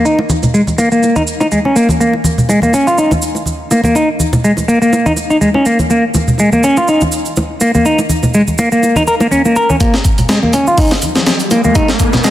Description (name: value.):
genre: breakbeat, breaks.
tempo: 123 BPM.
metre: 4/4.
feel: swing 55% on 16ths.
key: Bb minor.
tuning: A4 = 438 Hz.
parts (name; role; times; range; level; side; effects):
semi-hollow electric guitar; riff; 0.0-12.3 s; Ab3 to Bb4; -11 LUFS; equal; low-pass filter, dub echo.
shaker; drums; 0.1-12.3 s; none; -23 LUFS; right 4 dB; high-pass filter on perc, low-pass filter on perc, studio reverb, high-pass filter on room, low-pass filter on room.
bongos and congas; percussion; 0.2-12.2 s; none; -17 LUFS; equal; none.
breakbeat sampler-style drum kit; drums; 9.8-12.3 s; hi-hat, kick drum, snare drum; -13 LUFS; equal; studio reverb.
riser; sound effects; 10.6-12.3 s; none; -19 LUFS; equal; none.
room: moderate plate reverb, RT60 2.3 s.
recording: dense, heavily limited modern master, vinyl crackle.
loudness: -10 LUFS.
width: side -13 dB against mid.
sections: 0.0-9.8 A section; 9.8-12.3 B section.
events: build-up 9.8-12.3; filter sweep on clean electric guitar 9.8-12.3; riser 10.6-12.3.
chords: none.